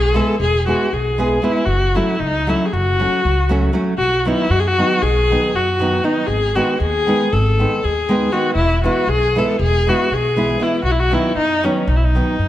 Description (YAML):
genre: balkan folk, Balkan wedding band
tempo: 236 BPM (eighths)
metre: 9/8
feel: straight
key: B mixolydian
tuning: A4 = 440 Hz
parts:
  - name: warm viola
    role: melody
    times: 0.0-12.5 s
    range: C#4 to A4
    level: -18 LUFS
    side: left 2 dB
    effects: none
  - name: upright bass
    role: bass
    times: 0.0-12.5 s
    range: E1 to F#2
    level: -19 LUFS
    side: equal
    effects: none
  - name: nylon-string guitar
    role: accompaniment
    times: 0.1-12.4 s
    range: D#3 to G#4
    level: -20 LUFS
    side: right 2 dB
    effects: none
room: moderate recital hall reverb, RT60 1.5 s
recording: lossy compression artefacts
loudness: -14 LUFS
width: side -13 dB against mid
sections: 0.0-12.5 A section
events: none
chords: 0.0 E; 1.7 F#m; 4.0 B; 6.3 G#m; 8.6 E; 10.8 B